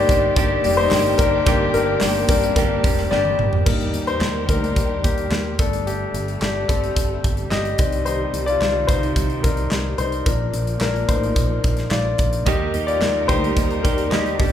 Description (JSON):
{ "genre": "piano-driven pop", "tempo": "109 BPM", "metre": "4/4", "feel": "straight", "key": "unclear", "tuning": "A4 = 437 Hz", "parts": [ { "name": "warm concert grand piano", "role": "accompaniment", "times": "0.0-14.5 s", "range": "Eb3 to Eb5", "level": "-21 LUFS", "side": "left 4 dB", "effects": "none" }, { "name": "warm studio string section", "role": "sustained chords", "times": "0.0-14.5 s", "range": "C3 to D5", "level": "-30 LUFS", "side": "right 2 dB", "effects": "none" }, { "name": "direct-recorded clean electric guitar", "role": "riff", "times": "0.0-4.2, 12.5-14.5 s", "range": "G2 to A4", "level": "-25 LUFS", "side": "right 8 dB", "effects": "none" }, { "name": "fingered electric bass", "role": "bass", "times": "0.0-14.5 s", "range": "F1 to Eb2", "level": "-26 LUFS", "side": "equal", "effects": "none" }, { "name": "modern studio drum kit", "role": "drums", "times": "0.1-14.5 s", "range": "crash cymbal, handclaps, hi-hat, kick drum, snare drum, toms", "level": "-22 LUFS", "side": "right 1 dB", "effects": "none" } ], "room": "wet recital hall reverb, RT60 1.3 s", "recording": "recorded in a church or concert hall", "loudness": "-17 LUFS", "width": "side -10 dB against mid", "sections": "0.0-3.7 A section; 3.7-14.5 B section", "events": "grand piano solo 0.0-3.7, 3.7-14.5; drum fill 3.1-3.7", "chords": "0.0 Gm; 3.7 Eb; 5.6 Gsus2; 7.8 Cmadd9; 10.3 Bb; 12.5 Eb" }